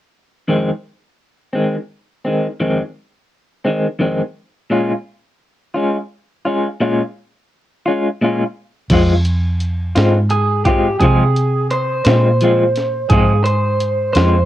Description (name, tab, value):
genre	slow blues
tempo	57 BPM (dotted quarters)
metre	12/8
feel	straight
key	F minor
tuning	A4 = 440 Hz
part	electric guitar through a small old amp	accompaniment	0.5-14.4 s	F2 to F4	-16 LUFS	left 1 dB	tremolo, cassette tape
part	vintage muted fingered electric bass	bass	8.9-14.5 s	F2 to C3	-16 LUFS	equal	none
part	breakbeat sampler-style drum kit	drums	8.9-14.3 s	crash cymbal, hi-hat, kick drum, snare drum	-19 LUFS	equal	none
part	electric guitar through a small old amp	melody	10.3-14.5 s	G4 to C5	-17 LUFS	right 2 dB	spring reverb, cassette tape
room	light reverb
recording	home recording on cassette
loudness	-15 LUFS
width	side -13 dB against mid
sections	0.5-8.9 A section; 8.9-14.5 B section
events	none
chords	0.5 Fm7; 4.7 Bbm7; 8.9 Fm